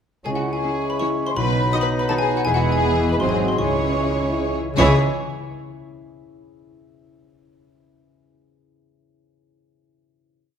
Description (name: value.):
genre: cinematic, playful, whimsical film cue.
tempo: 149-165 BPM.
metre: 3/4.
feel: straight.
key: C# minor.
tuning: A4 = 440 Hz.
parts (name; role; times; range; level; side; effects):
xylophone with wooden mallets; melody; 0.3-5.0 s; F#5 to D#6; -29 LUFS; left 2 dB; none.
bright clarinet; second line; 0.3-5.0 s; D#4 to F#4; -30 LUFS; left 1 dB; none.
bright flute section; second line; 0.3-5.0 s; F#5 to D#6; -28 LUFS; left 3 dB; none.
mellow cor anglais; second line; 0.3-5.0 s; B4 to C#5; -31 LUFS; right 3 dB; none.
warm studio violin section; second line; 0.3-5.0 s; F#4 to D#5; -28 LUFS; left 1 dB; none.
mellow bassoon; accompaniment; 0.3-5.0 s; F#3 to G#3; -27 LUFS; right 3 dB; none.
warm French horn section; sustained chords; 0.3-4.9 s; B3 to G#4; -29 LUFS; left 4 dB; none.
concert harp; arpeggios; 0.3-6.0 s; E2 to G#5; -29 LUFS; left 6 dB; none.
rich studio double bass section; bass; 0.3-5.0 s; E1 to C#2; -26 LUFS; right 3 dB; none.
warm studio cello section; bass; 0.3-5.0 s; E2 to C#3; -26 LUFS; right 2 dB; none.
rich studio violin section; melody; 0.6-5.0 s; E4 to G#4; -32 LUFS; left 2 dB; none.
rich studio viola section; accompaniment; 0.6-5.0 s; D#3 to E4; -28 LUFS; right 1 dB; none.
room: wet scoring stage reverb, RT60 1.7 s.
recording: none.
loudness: -18 LUFS.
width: side -8 dB against mid.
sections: 0.3-4.8 A section; 4.8-6.0 final chord.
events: none.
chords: 0.3 C#m; 1.4 B; 2.5 E; 3.2 G#7; 3.6 C#m.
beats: | 0.26 0.63 1.00 | 1.36 1.73 2.09 | 2.46 2.83 3.21 | 3.59 3.99 4.39 | 4.79 5.17 5.56.